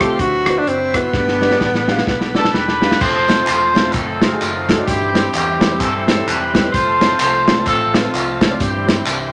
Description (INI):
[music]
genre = uptempo gospel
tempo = 129 BPM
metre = 4/4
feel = swing 59% on 8ths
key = C major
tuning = A4 = 440 Hz
[part]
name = breathy tenor saxophone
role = melody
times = 0.0-2.5 s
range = B3 to G4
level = -20 LUFS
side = equal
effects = none
[part]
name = dark upright piano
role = accompaniment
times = 0.0-9.3 s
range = G2 to F5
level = -25 LUFS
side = equal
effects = none
[part]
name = bright tonewheel organ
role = sustained chords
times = 0.0-9.3 s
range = D#3 to C5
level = -29 LUFS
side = equal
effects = slow rotary speaker, overdrive, chorus vibrato
[part]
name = fingered electric bass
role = bass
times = 0.0-9.3 s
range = E1 to G2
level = -31 LUFS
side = equal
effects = none
[part]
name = warm soul drum kit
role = drums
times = 0.0-9.2 s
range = crash cymbal, hi-hat, kick drum, rim click, snare drum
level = -20 LUFS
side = equal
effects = none
[part]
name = clear horn section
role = melody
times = 2.4-9.3 s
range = A3 to C5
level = -20 LUFS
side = equal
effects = none
[part]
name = tambourine and handclaps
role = percussion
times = 3.0-9.2 s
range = none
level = -27 LUFS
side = equal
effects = none
[sound]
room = wet large studio reverb, RT60 1.2 s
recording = none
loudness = -16 LUFS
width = mono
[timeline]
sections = 0.0-3.0 A section; 3.0-9.3 B section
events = drum fill 1.1-3.0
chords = 0.2 D13; 1.1 G; 3.0 F; 3.9 F#dim7; 4.9 C/G; 6.7 F; 8.6 C/G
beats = 0.19 0.66 | 1.13 1.60 2.07 2.54 | 3.01 3.48 3.94 4.41 | 4.87 5.34 5.81 6.27 | 6.74 7.20 7.67 8.13 | 8.60 9.06